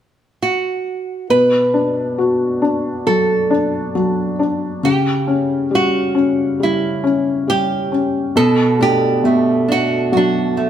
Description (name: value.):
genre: pop.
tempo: 68 BPM.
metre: 4/4.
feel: straight.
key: B minor.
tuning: A4 = 440 Hz.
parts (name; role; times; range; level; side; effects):
nylon-string guitar; melody; 0.4-10.7 s; D4 to B4; -18 LUFS; right 3 dB; none.
felt-muted upright piano; accompaniment; 1.3-10.7 s; B2 to F#4; -16 LUFS; left 2 dB; none.
fingerpicked steel-string acoustic guitar; arpeggios; 8.4-10.7 s; B2 to F#4; -19 LUFS; right 4 dB; none.
room: moderate stone room reverb, RT60 1.2 s.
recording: band playing live in one room.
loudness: -14 LUFS.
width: side -10 dB against mid.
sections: 0.0-1.3 A section; 1.3-8.4 B section; 8.4-10.7 C section.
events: none.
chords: 0.0 N.C.; 1.3 Bm7; 4.8 C#dim; 8.4 Bm7.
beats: 0.42 | 1.30 2.19 3.07 3.95 | 4.83 5.71 6.60 7.48 | 8.36 9.24 10.13.